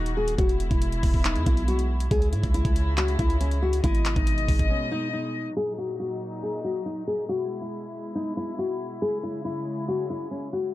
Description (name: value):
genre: hip hop, trap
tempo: 139 BPM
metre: 4/4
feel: half-time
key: unclear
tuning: A4 = 444 Hz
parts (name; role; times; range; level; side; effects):
- nylon-string guitar; melody; 0.0-10.7 s; Db4 to Ab4; -29 LUFS; left 2 dB; none
- dark studio string section; sustained chords; 0.0-10.7 s; Bb2 to Eb5; -33 LUFS; left 1 dB; none
- long sustained 808-style bass; bass; 0.0-4.7 s; Eb1 to Ab2; -25 LUFS; equal; none
- trap drum kit; drums; 0.1-5.9 s; handclaps, hi-hat, kick drum; -24 LUFS; equal; none
room: little or no reverb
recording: dark, warm production, low-pass filter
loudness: -23 LUFS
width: side -15 dB against mid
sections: 0.0-5.6 A section; 5.6-10.7 B section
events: break 4.7-5.6; filter sweep 5.6-10.7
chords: 0.4 E; 2.1 Dbm; 3.8 Abm; 5.6 Ebm; 7.3 E; 9.0 Dbm